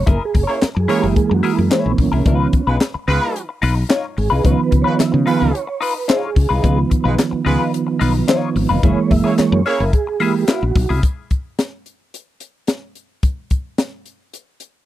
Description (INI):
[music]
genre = funk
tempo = 110 BPM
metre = 4/4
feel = straight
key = Db mixolydian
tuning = A4 = 440 Hz
[part]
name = mellow tonewheel organ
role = stabs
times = 0.0-11.0 s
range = Eb3 to F5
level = -18 LUFS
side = right 5 dB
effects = chorus vibrato
[part]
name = woody fretless electric bass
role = bass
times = 0.0-11.0 s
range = F1 to Db3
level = -18 LUFS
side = left 1 dB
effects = none
[part]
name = clean electric guitar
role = accompaniment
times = 0.1-11.0 s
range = Bb3 to Db5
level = -22 LUFS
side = left 6 dB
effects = wah, spring reverb
[part]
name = crisp fusion drum kit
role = drums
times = 0.1-14.7 s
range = handclaps, hi-hat, kick drum, snare drum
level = -17 LUFS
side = left 1 dB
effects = none
[part]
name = mellow horn section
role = second line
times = 0.5-9.8 s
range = Ab3 to Db5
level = -21 LUFS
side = right 4 dB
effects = none
[sound]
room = little or no reverb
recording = dry, close 1970s-style studio recording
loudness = -15 LUFS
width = side -13 dB against mid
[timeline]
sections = 0.0-11.0 A section; 11.0-14.9 B section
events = tonewheel organ solo 0.0-11.0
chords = 0.1 Gb9; 2.3 Db9; 8.8 Gb9; 11.0 N.C.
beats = | 0.07 0.62 1.17 1.71 | 2.26 2.81 3.36 3.90 | 4.45 5.00 5.55 6.09 | 6.64 7.19 7.74 8.29 | 8.84 9.38 9.93 10.48 | 11.03 11.58 12.13 12.68 | 13.23 13.79 14.34